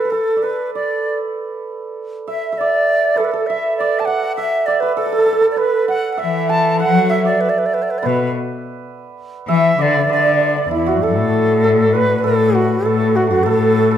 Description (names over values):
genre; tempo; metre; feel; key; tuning
chinese traditional, Chinese chamber ensemble; 99 BPM; 2/4; rubato; D gong mode; A4 = 441 Hz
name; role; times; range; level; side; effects
bright reedy xiao; melody; 0.0-14.0 s; E4 to A5; -18 LUFS; equal; none
hammered dulcimer; second line; 0.0-14.0 s; E4 to A5; -19 LUFS; right 5 dB; none
rich cello; second line; 6.2-14.0 s; E2 to F#3; -18 LUFS; left 6 dB; none
room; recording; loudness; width
moderate recital hall reverb, RT60 1.4 s; minimal, uncompressed stereo recording; -14 LUFS; side -10 dB against mid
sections
0.0-1.4 A section; 1.4-11.0 B section; 11.0-14.0 A section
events
none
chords
none